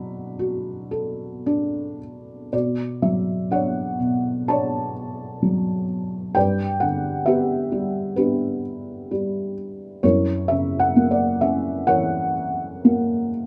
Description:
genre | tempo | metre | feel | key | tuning
classical, lyrical solo piano | 54-67 BPM | 4/4 | rubato | B minor | A4 = 440 Hz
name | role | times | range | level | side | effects
felt-muted upright piano | solo | 0.0-13.5 s | F#2 to B5 | -23 LUFS | equal | none
room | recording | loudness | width
light reverb | dark, warm production, nothing above 10.8 kHz | -23 LUFS | mono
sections
0.0-2.5 A section; 2.5-13.5 B section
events
none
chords
0.0 Bm7; 2.5 Bmadd9; 6.4 G; 10.0 F#7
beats
0.40 1.47 | 2.53 3.52 4.48 5.43 | 6.35 7.26 8.17 9.11 | 10.03 10.95 11.88 12.83

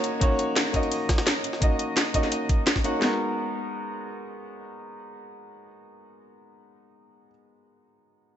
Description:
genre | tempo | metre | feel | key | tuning
liquid drum and bass | 171 BPM | 4/4 | straight | G# minor | A4 = 435 Hz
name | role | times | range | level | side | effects
clear baby grand piano | accompaniment | 0.0-8.3 s | G#3 to F#5 | -28 LUFS | equal | ping-pong delay
drum and bass drum kit | drums | 0.0-2.9 s | hi-hat, snare drum | -28 LUFS | equal | none
jungle sampler-style drum kit | drums | 0.0-2.9 s | hi-hat, snare drum | -31 LUFS | equal | high-pass filter on hats, high-pass filter on snare
drum and bass drum kit | drums | 0.2-3.1 s | kick drum, snare drum | -24 LUFS | equal | none
room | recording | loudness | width
light reverb, digital ambience | nothing above 7.9 kHz | -23 LUFS | side -10 dB against mid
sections
0.0-3.0 A section; 3.0-5.8 B section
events
none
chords
0.0 D#m7; 3.0 G#m9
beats
| 0.21 0.56 0.92 1.27 | 1.62 1.97 2.32 2.67 | 3.02 3.37 3.72 4.07 | 4.42 4.78 5.13 5.48

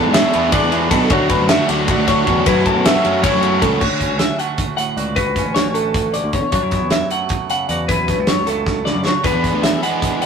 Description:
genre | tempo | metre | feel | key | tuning
math rock and midwest emo | 310 BPM (eighths) | 7/8 | straight | D lydian | A4 = 444 Hz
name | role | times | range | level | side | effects
twangy electric guitar | accompaniment | 0.0-10.3 s | D2 to F#4 | -22 LUFS | right 6 dB | none
twelve-string electric guitar | arpeggios | 0.0-10.3 s | A4 to F#5 | -19 LUFS | left 2 dB | none
overdriven electric guitar | riff | 0.0-3.8, 9.2-10.3 s | D3 to B4 | -19 LUFS | left 1 dB | none
growling fingered electric bass | bass | 0.1-9.7 s | A1 to F#3 | -23 LUFS | equal | overdrive
loose indie drum kit | drums | 0.1-10.3 s | crash cymbal, hi-hat, kick drum, ride cymbal, snare drum | -20 LUFS | equal | none
room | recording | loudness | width
moderate stone room reverb, RT60 1.0 s | rough rehearsal-room recording | -14 LUFS | side -6 dB against mid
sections
0.0-3.8 A section; 3.8-10.3 B section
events
drum fill 8.7-9.2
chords
0.0 E7sus4; 1.1 Dmaj9; 2.5 F#m7; 3.8 Dmaj9; 6.5 F#m7; 9.2 E9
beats
0.14 0.34 0.53 0.72 0.92 | 1.11 1.30 1.50 1.69 1.88 2.08 2.27 | 2.46 2.65 2.85 3.04 3.23 3.43 3.62 | 3.81 4.01 4.20 4.40 4.59 4.78 4.98 | 5.17 5.37 5.56 5.75 5.95 6.14 6.33 | 6.53 6.72 6.92 7.11 7.30 7.50 7.69 | 7.89 8.08 8.27 8.47 8.66 8.86 9.05 | 9.24 9.44 9.63 9.83 10.02 10.22

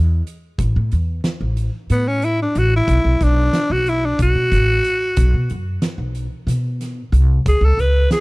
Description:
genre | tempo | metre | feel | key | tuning
progressive instrumental, band music in an uneven meter | 183 BPM (eighths) | 7/8 | straight | B dorian | A4 = 440 Hz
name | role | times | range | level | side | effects
upright bass | bass | 0.0-8.0 s | A1 to B2 | -17 LUFS | equal | none
oversized low-tuned drum kit | drums | 0.3-8.2 s | hi-hat, kick drum, snare drum | -24 LUFS | equal | none
growling tenor saxophone | melody | 1.9-8.2 s | B3 to B4 | -18 LUFS | equal | none
room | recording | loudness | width
little or no reverb | dry, close 1970s-style studio recording | -15 LUFS | side -24 dB against mid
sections
0.0-8.2 A section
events
tenor saxophone solo 0.0-8.2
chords
0.0 N.C.; 0.6 A5; 2.9 B5; 7.5 C#5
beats
0.26 | 0.59 0.92 1.25 1.57 1.90 2.23 2.56 | 2.88 3.21 3.54 3.86 4.19 4.52 4.84 | 5.17 5.50 5.83 6.15 6.48 6.81 7.13 | 7.46 7.79 8.11

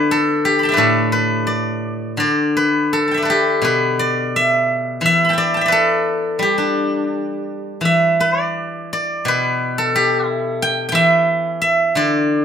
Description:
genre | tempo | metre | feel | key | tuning
chinese traditional, Chinese solo plucked strings | 82-91 BPM | 2/4 | rubato | G gong mode | A4 = 444 Hz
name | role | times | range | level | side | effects
steel-string zither | solo | 0.0-12.4 s | A2 to B5 | -15 LUFS | equal | none
room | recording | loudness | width
light reverb | minimal, uncompressed stereo recording | -15 LUFS | side -8 dB against mid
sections
0.0-7.8 A section; 7.8-12.4 B section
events
none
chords
none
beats
0.11 | 0.79 1.48 | 2.20 2.93 | 3.64 4.35 | 5.03 5.71 | 6.40 7.10 | 7.83 8.55 | 9.26 9.94 | 10.60 11.27 | 11.97

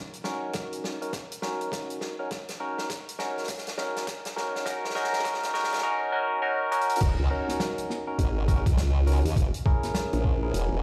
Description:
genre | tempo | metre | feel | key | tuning
glitch hop | 102 BPM | 4/4 | swing 62% on 16ths | unclear | A4 = 440 Hz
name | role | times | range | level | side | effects
natural country drum kit | drums | 0.1-10.7 s | crash cymbal, hi-hat, snare drum | -37 LUFS | equal | none
barky tine electric piano | stabs | 0.2-10.8 s | Db4 to Bb4 | -32 LUFS | equal | overdrive, phaser, sidechain pumping, tape echo
electronic kick drum | drums | 0.5-10.4 s | none | -28 LUFS | equal | overdrive
formant-sweep wobble bass | bass | 7.0-10.8 s | Eb1 to Eb2 | -27 LUFS | equal | chorus
room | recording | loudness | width
light reverb | played on a big sound system in a bare room, large studio reverb, high-pass filter | -28 LUFS | mono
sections
0.0-7.0 A section; 7.0-10.8 B section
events
build-up 0.0-7.0; drum fill 0.0-5.8, 6.7; drop 7.0-10.8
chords
0.0 Gb6/Db; 7.0 Ebm7; 9.4 Gb7 (rootless)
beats
0.54 1.13 1.72 | 2.31 2.89 3.48 4.07 | 4.66 5.25 5.83 6.42 | 7.01 7.60 8.19 8.78 | 9.36 9.95 10.54

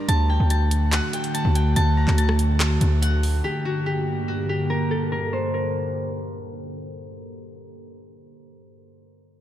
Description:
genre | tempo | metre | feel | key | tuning
hip hop, trap | 143 BPM | 4/4 | half-time | G harmonic minor | A4 = 444 Hz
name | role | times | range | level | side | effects
concert harp | melody | 0.0-7.7 s | F#4 to Bb5 | -28 LUFS | left 1 dB | tape echo
airy breathy pad | sustained chords | 0.0-6.8 s | G2 to F#4 | -27 LUFS | equal | chorus
distorted 808-style bass | bass | 0.1-3.4 s | D2 | -19 LUFS | equal | distortion
trap drum kit | drums | 0.1-3.3 s | handclaps, hi-hat, rim click | -29 LUFS | equal | none
room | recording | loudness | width
moderate cathedral reverb, RT60 6.0 s | dreamy mix soaked in reverb, low-pass filter | -20 LUFS | side -12 dB against mid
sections
0.0-3.4 A section; 3.4-6.8 B section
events
filter sweep 3.4-6.8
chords
0.1 D; 3.4 Gm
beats
| 0.09 0.51 0.92 1.34 | 1.76 2.18 2.60 3.02 | 3.44 3.86 4.28 4.70 | 5.12 5.54 5.96 6.38

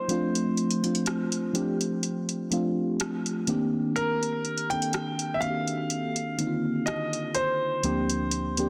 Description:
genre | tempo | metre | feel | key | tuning
contemporary R&B | 62 BPM | 4/4 | swing 54% on 16ths | C dorian | A4 = 440 Hz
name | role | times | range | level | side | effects
warm grand piano | melody | 0.0-8.7 s | Bb4 to G5 | -33 LUFS | equal | delay
mellow FM electric piano | accompaniment | 0.0-8.7 s | D2 to A4 | -30 LUFS | equal | chorus, phaser
booming analog drum machine | drums | 0.1-8.7 s | hi-hat, rim click | -34 LUFS | equal | soft clipping on snare
room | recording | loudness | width
moderate lush hall reverb, RT60 2.9 s | dense, heavily limited modern master | -28 LUFS | mono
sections
0.0-8.7 A section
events
break 0.0-8.7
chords
0.1 Dm7; 3.5 Cm7; 7.8 Bb69/D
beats
| 0.09 1.06 2.03 2.99 | 3.96 4.93 5.90 6.87 | 7.83

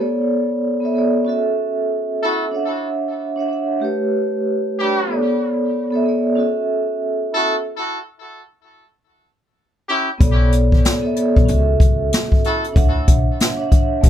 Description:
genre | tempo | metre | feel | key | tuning
hip hop, boom-bap hip-hop | 94 BPM | 4/4 | swing 62% on 16ths | B minor | A4 = 435 Hz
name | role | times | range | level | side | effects
vibraphone with soft mallets | accompaniment | 0.0-14.1 s | A3 to F#5 | -18 LUFS | right 1 dB | cassette tape, high-pass filter, low-pass filter
warm horn section | stabs | 2.2-12.6 s | G3 to A4 | -22 LUFS | equal | high-pass filter, low-pass filter, digital delay
upright bass | bass | 10.2-14.1 s | A1 to D2 | -18 LUFS | left 1 dB | none
jazz brush drum kit | drums | 10.2-14.1 s | hi-hat, kick drum, snare drum | -14 LUFS | left 1 dB | none
room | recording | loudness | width
light reverb | none | -16 LUFS | side -10 dB against mid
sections
0.0-14.1 A section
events
break 7.7-10.2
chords
0.0 Bm9; 1.3 F#m7/C#; 2.5 Dmaj9; 3.8 A9; 5.1 Bm9; 6.4 F#m7/C#; 7.7 N.C.; 8.9 C#dim; 10.2 Bm9; 11.5 F#m7/C#; 12.8 Dmaj9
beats
0.63 1.27 1.91 | 2.55 3.19 3.82 4.46 | 5.10 5.74 6.38 7.01 | 7.65 8.29 8.93 9.57 | 10.21 10.85 11.48 12.12 | 12.76 13.40 14.04

